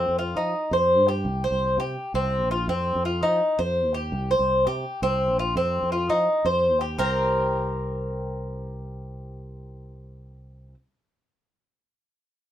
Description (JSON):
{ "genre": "latin, Cuban son and guajira", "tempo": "167 BPM", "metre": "4/4", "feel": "straight", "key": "C minor", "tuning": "A4 = 440 Hz", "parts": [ { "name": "Cuban tres", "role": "arpeggios", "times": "0.0-10.7 s", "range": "C4 to C5", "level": "-23 LUFS", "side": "equal", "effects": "none" }, { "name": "sustaining fretless electric bass", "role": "bass", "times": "0.0-10.7 s", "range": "Bb1 to F3", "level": "-30 LUFS", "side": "equal", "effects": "none" } ], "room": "moderate studio ambience, RT60 0.5 s", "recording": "minimal, uncompressed stereo recording", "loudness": "-22 LUFS", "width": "side -11 dB against mid", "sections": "0.0-7.0 A section; 7.0-9.9 B section", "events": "none", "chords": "0.0 F5; 1.3 C5; 2.7 F5; 4.1 C5; 5.6 F5; 7.0 C5" }